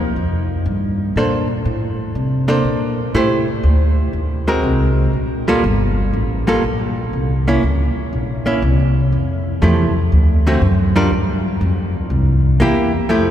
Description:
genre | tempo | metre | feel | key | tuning
jazz, small-group swing and bop | 121 BPM | 4/4 | swing 67% on 8ths | F major | A4 = 444 Hz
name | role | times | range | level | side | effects
upright bass | bass | 0.0-13.3 s | G1 to C3 | -16 LUFS | equal | none
archtop guitar, miked and amplified | accompaniment | 1.2-13.3 s | D3 to C5 | -19 LUFS | equal | none
room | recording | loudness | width
wet cathedral reverb, RT60 6.4 s | recorded in a church or concert hall | -14 LUFS | side -10 dB against mid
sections
0.0-13.1 A section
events
none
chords
0.2 Fsus2; 1.2 Bbmaj9; 3.2 Am7; 4.1 Ab9; 5.1 Gm9; 7.1 C7b9; 9.1 Fmaj9; 10.1 D7; 11.1 Fsus2; 12.1 C7

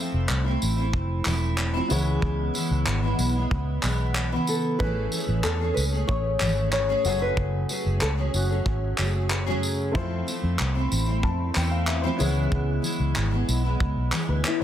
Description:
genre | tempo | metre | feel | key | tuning
acoustic pop | 93 BPM | 4/4 | straight | unclear | A4 = 440 Hz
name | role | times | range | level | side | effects
picked steel-string acoustic guitar | accompaniment | 0.0-14.6 s | F#2 to G#4 | -28 LUFS | equal | double-tracked left and right, plate reverb
warm upright piano | accompaniment | 0.0-14.6 s | A3 to A5 | -36 LUFS | left 4 dB | plate reverb
vintage muted fingered electric bass | bass | 0.1-14.6 s | E1 to F2 | -25 LUFS | equal | none
cloth-damped thuddy drum kit | drums | 0.3-14.6 s | handclaps, kick drum, tambourine | -29 LUFS | equal | none
nylon-string guitar | melody | 4.5-9.6, 14.5-14.6 s | E4 to C#5 | -28 LUFS | left 2 dB | plate reverb, ping-pong delay
room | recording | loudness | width
light reverb | dense, heavily limited modern master | -22 LUFS | side -10 dB against mid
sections
0.0-14.6 A section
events
none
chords
0.0 Fmaj7; 1.9 C#m7; 4.8 Amaj7; 7.0 F#madd9; 9.9 Fmaj7; 12.2 C#m7

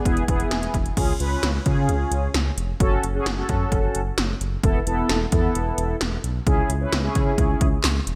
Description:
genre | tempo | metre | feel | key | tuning
synth-pop | 131 BPM | 4/4 | straight | unclear | A4 = 440 Hz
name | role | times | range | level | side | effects
mellow synth brass | accompaniment | 0.0-7.7 s | B3 to B4 | -28 LUFS | equal | chorus
smooth synth bass | bass | 0.1-8.2 s | E1 to C#3 | -27 LUFS | equal | none
80s electronic pad drums | drums | 0.1-8.2 s | crash cymbal, handclaps, hi-hat, kick drum, snare drum | -25 LUFS | equal | none
room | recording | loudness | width
light reverb, digital ambience | bright 1980s-style digital production | -22 LUFS | mono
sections
1.0-8.2 A section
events
none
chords
0.1 E; 1.0 C#; 2.8 F#m; 4.6 Esus4; 6.5 C#m

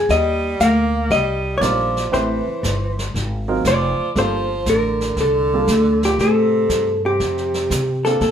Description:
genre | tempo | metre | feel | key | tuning
jazz, small-group swing and bop | 118 BPM | 4/4 | swing 68% on 8ths | G minor | A4 = 440 Hz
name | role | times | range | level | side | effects
vintage hollow-body jazz guitar | melody | 0.0-8.3 s | G4 to F5 | -19 LUFS | left 1 dB | none
upright bass | bass | 0.0-8.3 s | F1 to C3 | -21 LUFS | equal | none
clear tenor saxophone | second line | 0.1-8.0 s | Bb2 to Bb3 | -25 LUFS | right 3 dB | none
jazz brush drum kit | drums | 0.1-8.3 s | brushed snare drum, hi-hat, kick drum, snare drum | -28 LUFS | right 1 dB | none
dark baby grand piano | accompaniment | 1.6-8.2 s | Gb3 to B4 | -23 LUFS | right 4 dB | none
room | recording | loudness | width
moderate studio reverb, RT60 0.7 s | band playing live in one room | -16 LUFS | side -8 dB against mid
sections
0.0-8.2 A section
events
none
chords
0.1 Cm11; 2.1 Am7; 3.1 Ab13; 4.2 Gm9; 6.2 Gsus24; 7.2 F69

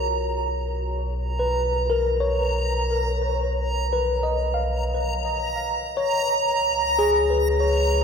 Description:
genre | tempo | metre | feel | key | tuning
ambient | 59 BPM | 4/4 | straight | B lydian | A4 = 440 Hz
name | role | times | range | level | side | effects
tine electric piano | arpeggios | 0.0-8.0 s | F#4 to E#5 | -24 LUFS | left 2 dB | auto-pan, tape echo
deep rumbling drone | bass | 0.0-8.0 s | B1 to C#2 | -26 LUFS | equal | built-in reverb
backwards swelling texture | texture | 0.0-8.0 s | A#5 | -26 LUFS | right 2 dB | built-in reverb
room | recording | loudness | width
moderate lush hall reverb, RT60 3.0 s | none | -21 LUFS | side -6 dB against mid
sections
0.0-8.0 A section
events
none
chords
0.0 Bmaj7; 6.0 C#7

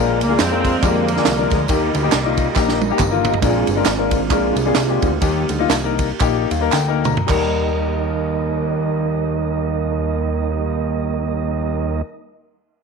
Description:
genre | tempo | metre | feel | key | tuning
uptempo gospel | 104-139 BPM | 4/4 | swing 58% on 8ths | Eb major | A4 = 440 Hz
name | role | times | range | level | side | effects
warm concert grand piano | accompaniment | 0.0-12.0 s | Eb2 to Bb5 | -21 LUFS | left 14 dB | none
mellow tonewheel organ | sustained chords | 0.0-12.0 s | G3 to Bb5 | -23 LUFS | right 12 dB | slow rotary speaker
fat analog bass | bass | 0.0-12.0 s | G1 to F2 | -22 LUFS | equal | none
warm studio string section | melody | 0.2-3.0 s | Bb2 to C4 | -23 LUFS | right 2 dB | tape echo
tight funk drum kit | drums | 0.2-7.5 s | crash cymbal, kick drum, ride cymbal, snare drum, toms | -22 LUFS | right 3 dB | none
tambourine and handclaps | percussion | 0.2-7.6 s | none | -27 LUFS | right 7 dB | none
room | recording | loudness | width
light reverb, small room ambience | 1960s-style stereo with parts hard left and right, lossy compression artefacts | -16 LUFS | side -5 dB against mid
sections
0.0-3.4 A section; 3.4-7.3 B section; 7.3-11.9 C section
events
drum fill 2.6-3.4, 6.7-7.3; slowing down 3.4-7.3; tonewheel organ solo 3.4-7.3; grand piano fill 6.2-7.3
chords
0.0 Bb7; 1.7 Eb; 3.4 Bb7; 5.2 Eb

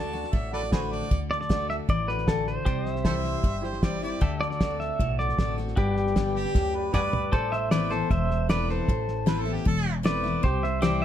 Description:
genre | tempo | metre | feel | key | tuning
honky-tonk and classic country | 154 BPM | 4/4 | straight | unclear | A4 = 440 Hz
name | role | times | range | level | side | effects
pedal steel guitar | melody | 0.0-11.0 s | G4 to E5 | -28 LUFS | equal | none
warm harmonica | second line | 0.0-9.9 s | F#4 to A5 | -33 LUFS | right 2 dB | none
picked steel-string acoustic guitar | accompaniment | 0.0-11.0 s | E2 to G4 | -32 LUFS | left 7 dB | none
warm baby grand piano | accompaniment | 0.0-11.0 s | C4 to D5 | -37 LUFS | right 3 dB | none
pedal steel guitar | sustained chords | 0.0-11.0 s | F#4 to E5 | -38 LUFS | left 2 dB | none
upright bass | bass | 0.0-11.0 s | E1 to D2 | -30 LUFS | equal | none
cloth-damped thuddy drum kit | drums | 0.1-11.0 s | hi-hat, kick drum, snare drum, toms | -26 LUFS | equal | none
room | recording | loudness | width
light reverb | close, detailed microphones | -24 LUFS | side -10 dB against mid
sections
0.0-7.3 A section; 7.3-11.0 B section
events
drum fill 6.5-7.3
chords
0.0 D; 2.7 C; 4.2 D7; 5.8 G; 7.3 Amadd9; 10.4 C

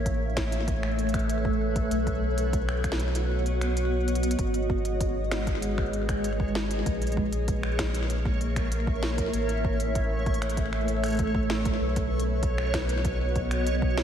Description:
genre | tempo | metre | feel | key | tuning
IDM | 97 BPM | 4/4 | straight | unclear | A4 = 436 Hz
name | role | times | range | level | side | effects
granular cloud pad | sustained chords | 0.0-14.0 s | G#3 to E5 | -29 LUFS | equal | built-in reverb
warm sub bass | bass | 0.0-14.0 s | G#1 to B1 | -29 LUFS | equal | none
electronic kick drum | drums | 0.1-13.9 s | none | -31 LUFS | equal | overdrive
organic electronic drum kit | drums | 0.1-14.0 s | finger snaps, hi-hat, snare drum | -35 LUFS | equal | overdrive, ping-pong delay
backwards swelling texture | texture | 5.1-14.0 s | C#5 | -38 LUFS | right 3 dB | built-in reverb
room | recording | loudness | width
moderate lush hall reverb, RT60 2.4 s | dreamy mix soaked in reverb | -25 LUFS | side -9 dB against mid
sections
0.0-14.0 A section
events
kick drops out 3.2-4.4; drum fill 4.1-4.4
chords
0.0 Aadd9; 1.9 Badd9; 4.4 G#m; 6.9 A#dim; 9.3 Aadd9; 11.8 Badd9

